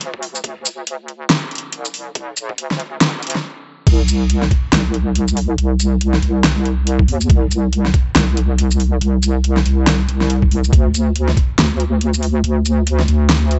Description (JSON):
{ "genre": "deep dubstep", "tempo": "140 BPM", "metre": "4/4", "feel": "swing 59% on 16ths, half-time", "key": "unclear", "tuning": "A4 = 440 Hz", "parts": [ { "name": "deep soft wobble bass", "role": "bass", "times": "0.0-13.6 s", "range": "C2 to Eb2", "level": "-18 LUFS", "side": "equal", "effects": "chorus, high-pass filter" }, { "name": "deep house drum kit", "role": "drums", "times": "0.0-13.6 s", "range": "crash cymbal, hi-hat, shaker, snare drum", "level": "-20 LUFS", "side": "equal", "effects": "overdrive" }, { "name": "electronic kick drum", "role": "drums", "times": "0.1-11.5 s", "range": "none", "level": "-16 LUFS", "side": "equal", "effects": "high-pass filter on kick" } ], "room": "little or no reverb", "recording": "nothing above 8.0 kHz", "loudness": "-16 LUFS", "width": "mono", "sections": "0.0-3.9 A section; 3.9-13.6 B section", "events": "build-up 0.0-3.9; stop 3.4-3.9; drop 3.9-13.6", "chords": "none" }